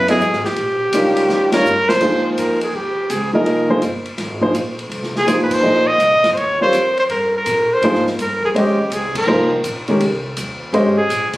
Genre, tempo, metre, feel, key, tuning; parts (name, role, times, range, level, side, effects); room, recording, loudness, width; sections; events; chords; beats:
modal jazz; 165 BPM; 4/4; swing 65% on 8ths; Ab major; A4 = 440 Hz
warm trumpet; melody; 0.0-11.3 s; G4 to Eb5; -16 LUFS; equal
warm concert grand piano; accompaniment; 0.0-10.9 s; Eb3 to D#5; -17 LUFS; equal
upright bass; bass; 0.0-11.4 s; F#1 to Bb2; -30 LUFS; equal
open jazz drum kit; drums; 0.1-11.4 s; crash cymbal, hi-hat, kick drum, ride cymbal, snare drum; -26 LUFS; equal
moderate studio reverb, RT60 0.9 s; recorded on a phone in the room, club reverb; -14 LUFS; side -17 dB against mid
0.0-2.0 A section; 2.0-11.4 B section
drum fill 1.3-2.0; band accent 1.5, 5.5, 9.1
0.0 Emaj9; 0.6 D#9; 2.0 Abmaj9
0.20 | 0.56 0.92 1.28 1.65 | 2.01 2.37 2.73 3.10 | 3.46 3.82 4.18 4.55 | 4.91 5.27 5.64 6.00 | 6.36 6.73 7.09 7.45 | 7.82 8.18 8.54 8.91 | 9.27 9.63 10.00 10.36 | 10.73 11.09